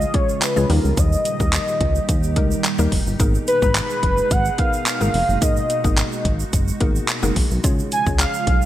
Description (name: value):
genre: dance-pop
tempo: 108 BPM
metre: 4/4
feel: straight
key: G# dorian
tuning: A4 = 439 Hz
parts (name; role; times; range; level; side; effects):
- warm velvety synth lead; melody; 0.0-8.7 s; A#4 to G#5; -22 LUFS; equal; chorus, digital delay
- glassy FM pad; sustained chords; 0.0-8.7 s; A#2 to G#4; -29 LUFS; right 2 dB; ensemble chorus, built-in reverb, sidechain pumping
- chorused synth bass; bass; 0.0-8.7 s; E#1 to D#2; -21 LUFS; equal; sidechain pumping
- egg shaker; percussion; 0.0-8.7 s; none; -33 LUFS; right 9 dB; none
- mallet-like synth pluck; accompaniment; 0.1-8.7 s; G3 to A#5; -27 LUFS; left 4 dB; chorus, sidechain pumping
- pop drum kit; drums; 0.1-8.6 s; handclaps, hi-hat, kick drum; -21 LUFS; equal; none
room: light reverb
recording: bright 1980s-style digital production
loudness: -17 LUFS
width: side -13 dB against mid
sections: 0.0-8.7 A section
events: none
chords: 0.0 C#; 0.7 D#; 3.2 G#madd9; 7.6 C#